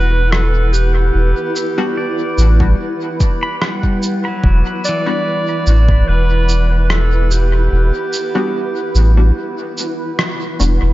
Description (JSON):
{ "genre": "ambient dub", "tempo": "73 BPM", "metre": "4/4", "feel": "swing 53% on 16ths", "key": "E minor", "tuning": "A4 = 439 Hz", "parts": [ { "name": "warm clarinet", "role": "melody", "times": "0.0-10.2 s", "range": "G4 to D5", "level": "-22 LUFS", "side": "right 1 dB", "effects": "dub echo" }, { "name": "granular cloud pad", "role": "sustained chords", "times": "0.0-10.9 s", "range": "E4 to F#5", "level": "-23 LUFS", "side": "equal", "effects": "built-in reverb" }, { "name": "filtered dub chord stab", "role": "stabs", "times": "0.0-10.8 s", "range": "G3 to F#5", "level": "-24 LUFS", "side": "left 2 dB", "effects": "lush chorus, dub echo" }, { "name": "soft dub sub bass", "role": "bass", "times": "0.0-10.9 s", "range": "E1 to A1", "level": "-12 LUFS", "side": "equal", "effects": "none" }, { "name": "electronic rim click and cabasa", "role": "drums", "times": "0.3-10.8 s", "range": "none", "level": "-22 LUFS", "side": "equal", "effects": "overdrive, dub echo" }, { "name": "pedal steel guitar", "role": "arpeggios", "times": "2.0-7.1 s", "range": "E3 to B5", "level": "-24 LUFS", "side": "equal", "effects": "dub echo" }, { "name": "electronic kick drum", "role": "drums", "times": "2.6-6.0 s", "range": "none", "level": "-15 LUFS", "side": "equal", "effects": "none" } ], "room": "light reverb", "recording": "nothing above 7.5 kHz", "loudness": "-13 LUFS", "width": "side -16 dB against mid", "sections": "0.0-10.9 A section", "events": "filter sweep on pedal steel guitar 0.0-10.9; kick drops out 7.7-10.9; band accent 10.2-10.6", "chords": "0.0 Em7" }